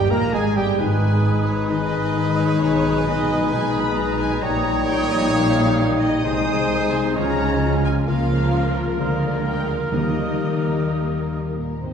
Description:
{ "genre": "classical, dramatic, fast romantic movement for symphony orchestra", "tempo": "132 BPM", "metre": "4/4", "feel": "rubato", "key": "G# minor", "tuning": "A4 = 440 Hz", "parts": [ { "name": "warm symphonic violin section", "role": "melody", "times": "0.0-11.9 s", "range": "Bb4 to Eb6", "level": "-30 LUFS", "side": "left 3 dB", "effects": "none" }, { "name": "dark symphonic violin section", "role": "second line", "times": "0.0-11.9 s", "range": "Eb4 to Db5", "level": "-32 LUFS", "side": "left 2 dB", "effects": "none" }, { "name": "flute section", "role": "second line", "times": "0.0-11.6 s", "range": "G5 to F6", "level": "-33 LUFS", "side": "right 2 dB", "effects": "none" }, { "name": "mellow clarinet", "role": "second line", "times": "0.0-11.6 s", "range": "Db4 to A#4", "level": "-29 LUFS", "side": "equal", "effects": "none" }, { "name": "mellow bassoon", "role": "accompaniment", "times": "0.0-11.6 s", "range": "G3 to Bb3", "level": "-29 LUFS", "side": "right 1 dB", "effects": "none" }, { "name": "warm French horn section", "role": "sustained chords", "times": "0.0-11.9 s", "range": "G3 to F4", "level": "-26 LUFS", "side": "left 3 dB", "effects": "none" }, { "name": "concert harp", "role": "arpeggios", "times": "0.0-11.9 s", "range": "G#2 to Bb4", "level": "-26 LUFS", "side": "left 3 dB", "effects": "none" }, { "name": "bright trumpet", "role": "stabs", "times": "0.0-11.6 s", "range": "Bb4 to A#5", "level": "-29 LUFS", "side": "right 1 dB", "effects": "none" }, { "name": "dark symphonic cello section", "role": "bass", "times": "0.0-11.9 s", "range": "G2 to Eb3", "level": "-28 LUFS", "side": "right 2 dB", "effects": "none" }, { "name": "warm symphonic double bass section", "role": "bass", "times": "0.0-11.9 s", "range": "G1 to Eb2", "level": "-27 LUFS", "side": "right 1 dB", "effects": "none" }, { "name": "warm oboe", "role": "second line", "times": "0.1-11.6 s", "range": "G4 to Db5", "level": "-33 LUFS", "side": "right 2 dB", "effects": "none" }, { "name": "rich symphonic viola section", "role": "accompaniment", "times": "0.1-11.9 s", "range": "D#3 to D#4", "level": "-31 LUFS", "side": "right 1 dB", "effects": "none" }, { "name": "timpani", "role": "percussion", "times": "0.8-1.4, 9.9-11.9 s", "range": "G#2 to Eb3", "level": "-28 LUFS", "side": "right 2 dB", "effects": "none" } ], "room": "wet recital hall reverb, RT60 1.6 s", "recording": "heard from further back in the room, nothing above 10.3 kHz", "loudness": "-18 LUFS", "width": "side -7 dB against mid", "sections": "0.0-11.8 A section", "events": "none", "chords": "0.0 D#; 0.8 G#m; 2.6 G#m/B; 4.4 Eb7/Bb; 6.2 Ab/C; 7.2 Db; 8.1 Bbm/Db; 9.0 Bb7/D; 9.9 Eb", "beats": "0.34 | 0.79 1.25 1.71 2.16 | 2.62 3.08 3.53 3.98 | 4.43 4.88 5.33 5.78 | 6.25 6.71 7.16 7.61 | 8.07 8.53 8.98 9.45 | 9.92 10.40 10.88 11.36 | 11.84" }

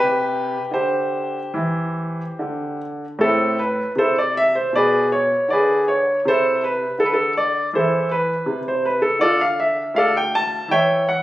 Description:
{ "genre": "classical, baroque-style suite movement for grand piano", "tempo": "71-81 BPM", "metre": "4/4", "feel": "rubato", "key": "C major, A minor from 3.2 s", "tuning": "A4 = 440 Hz", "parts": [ { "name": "clear baby grand piano", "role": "solo", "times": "0.0-11.2 s", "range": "D2 to A5", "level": "-17 LUFS", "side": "equal", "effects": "none" } ], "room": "moderate stone room reverb, RT60 1.4 s", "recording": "recorded on a phone in the room, club reverb, compression", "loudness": "-17 LUFS", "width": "side -15 dB against mid", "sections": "0.0-3.2 A section; 3.2-11.2 A section", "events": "none", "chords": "0.0 C; 3.2 Am; 4.7 G#dim/B; 6.2 Am/C; 9.2 Dm; 10.7 C#dim/E", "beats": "0.71 1.55 2.38 | 3.19 3.96 4.71 5.46 | 6.22 6.97 7.72 8.46 | 9.21 9.97 10.71" }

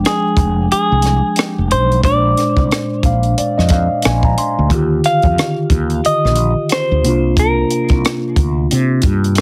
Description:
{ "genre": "R&B, neo-soul", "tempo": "90 BPM", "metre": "4/4", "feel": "swing 58% on 16ths", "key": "F dorian", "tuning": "A4 = 440 Hz", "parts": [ { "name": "mellow tine electric piano", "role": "accompaniment", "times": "0.0-9.4 s", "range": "Bb2 to C6", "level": "-20 LUFS", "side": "equal", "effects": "none" }, { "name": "mellow fretless electric bass", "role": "bass", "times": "0.0-9.4 s", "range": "F1 to C3", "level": "-18 LUFS", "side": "equal", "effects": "none" }, { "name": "semi-hollow electric guitar", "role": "melody", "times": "0.1-9.4 s", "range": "Ab4 to F5", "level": "-20 LUFS", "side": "equal", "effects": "plate reverb, tape echo" }, { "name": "compact cocktail drum kit", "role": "drums", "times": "0.1-9.4 s", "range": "hi-hat, kick drum, rim click", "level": "-19 LUFS", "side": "equal", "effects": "none" } ], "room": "light reverb", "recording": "heavily compressed radio sound", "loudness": "-15 LUFS", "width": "mono", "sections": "0.0-9.4 A section", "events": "tine electric piano fill 2.7-4.7", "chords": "0.0 Fm69; 2.0 Bb9; 4.7 Ebmaj9; 7.0 C9sus4", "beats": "0.03 0.70 1.36 | 2.03 2.70 3.37 4.03 | 4.70 5.37 6.03 6.70 | 7.37 8.03 8.70 9.37" }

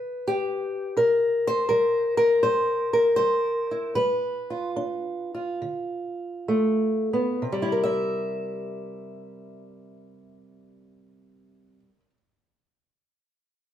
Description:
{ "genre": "acoustic country blues, solo or duo", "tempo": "62-83 BPM", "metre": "4/4", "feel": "swing 68% on 8ths", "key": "C mixolydian", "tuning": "A4 = 440 Hz", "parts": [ { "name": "fingerpicked old ladder-braced acoustic guitar", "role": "solo", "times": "0.0-12.2 s", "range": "C3 to E5", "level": "-23 LUFS", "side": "equal", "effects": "none" } ], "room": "wet studio reverb, RT60 0.8 s", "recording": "heard from further back in the room", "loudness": "-22 LUFS", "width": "side -10 dB against mid", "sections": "0.0-7.4 A section; 7.4-11.3 B section", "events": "slowing down 1.0-7.4", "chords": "0.0 G; 1.0 C7(no3); 4.0 G7; 7.4 C7", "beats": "0.24 | 0.96 1.69 2.43 3.18 | 3.95 4.76 5.60 6.48 | 7.42 8.38 9.35 10.32" }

